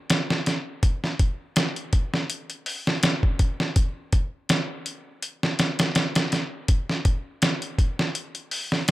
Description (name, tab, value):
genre	trip hop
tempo	82 BPM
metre	4/4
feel	swing 55% on 16ths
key	none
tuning	none
part	dusty soul sampler-style drum kit	drums	0.1-8.9 s	hi-hat, kick drum, snare drum	-22 LUFS	equal	small room ambience
room	light reverb, digital ambience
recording	none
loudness	-22 LUFS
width	side -17 dB against mid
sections	0.0-8.9 A section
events	none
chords	none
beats	0.10 | 0.83 1.56 2.29 3.02 | 3.75 4.49 5.22 5.95 | 6.68 7.41 8.15 8.88